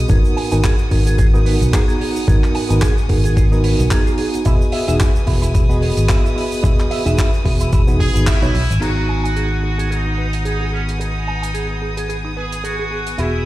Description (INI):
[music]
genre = nu-disco, nu disco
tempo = 110 BPM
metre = 4/4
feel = swing 56% on 16ths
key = G# minor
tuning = A4 = 441 Hz
[part]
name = reed electric piano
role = accompaniment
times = 0.0-13.5 s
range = B3 to A#5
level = -22 LUFS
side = right 2 dB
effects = overdrive, fast tremolo, sidechain pumping, low-pass filter, tape echo
[part]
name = clear studio violin section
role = sustained chords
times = 0.0-13.5 s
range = B3 to D#6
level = -30 LUFS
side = equal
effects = sidechain pumping
[part]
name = fingered electric bass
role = bass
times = 0.0-13.5 s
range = E1 to B1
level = -18 LUFS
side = equal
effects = none
[part]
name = electric guitar with an envelope filter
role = riff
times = 0.1-13.3 s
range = B3 to G#5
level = -27 LUFS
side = right 2 dB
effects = wide subtle chorus, low-pass filter, tape echo
[part]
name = damped 70s drum kit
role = drums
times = 0.1-13.3 s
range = crash cymbal, handclaps, hi-hat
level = -27 LUFS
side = right 1 dB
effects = studio reverb
[part]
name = electronic kick drum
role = drums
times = 0.1-8.4 s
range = none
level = -16 LUFS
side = equal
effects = studio reverb
[part]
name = egg shaker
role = percussion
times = 0.1-8.8 s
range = none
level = -37 LUFS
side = equal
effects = none
[part]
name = muted trumpet section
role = melody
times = 8.0-13.5 s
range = C#4 to G#4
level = -25 LUFS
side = equal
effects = dub echo
[sound]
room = light reverb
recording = played on a big sound system in a bare room, large studio reverb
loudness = -14 LUFS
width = side -16 dB against mid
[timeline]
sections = 0.0-8.8 A section; 8.8-13.5 B section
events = band accent 8.3; filter sweep on reed electric piano 8.8-13.5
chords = 0.1 G#m7; 4.5 Emaj7; 8.8 G#m7